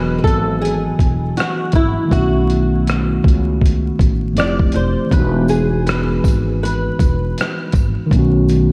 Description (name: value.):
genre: lo-fi hip hop.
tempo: 80 BPM.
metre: 4/4.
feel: swing 62% on 16ths.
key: E major.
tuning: A4 = 439 Hz.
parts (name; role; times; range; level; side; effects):
flamenco guitar; melody; 0.0-8.7 s; E4 to D5; -24 LUFS; equal; analog chorus, diffuse ambient delay.
mellow tine electric piano; accompaniment; 0.0-8.7 s; D#3 to D#5; -21 LUFS; equal; none.
upright bass; bass; 0.0-8.7 s; E1 to C#2; -22 LUFS; equal; none.
dusty soul sampler-style drum kit; drums; 0.2-8.7 s; hi-hat, kick drum, rim click; -19 LUFS; equal; none.
tambourine; percussion; 5.5-8.7 s; none; -47 LUFS; equal; none.
room: moderate plate reverb, RT60 2.6 s.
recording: dreamy mix soaked in reverb, vinyl crackle.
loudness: -16 LUFS.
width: mono.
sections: 0.0-8.7 A section.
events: none.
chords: 0.0 Emaj9; 2.1 B9; 4.4 Fmaj9; 5.1 Emaj9; 8.1 B9.